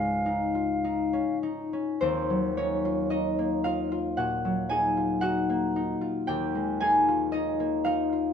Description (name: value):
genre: classical, impressionist duo for flute and harp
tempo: 50-58 BPM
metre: 4/4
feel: rubato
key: Eb dorian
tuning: A4 = 440 Hz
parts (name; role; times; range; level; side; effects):
- concert flute; melody; 0.0-1.4 s; F5; -29 LUFS; equal; none
- concert harp; accompaniment; 0.0-8.3 s; Db2 to Bb5; -25 LUFS; left 1 dB; none
room: moderate studio reverb, RT60 1.0 s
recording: minimal, uncompressed stereo recording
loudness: -25 LUFS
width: side -7 dB against mid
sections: 0.0-2.0 A section; 2.0-8.3 B section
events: none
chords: 0.0 Dbadd9; 2.0 Ebm9; 6.3 Fm11/Eb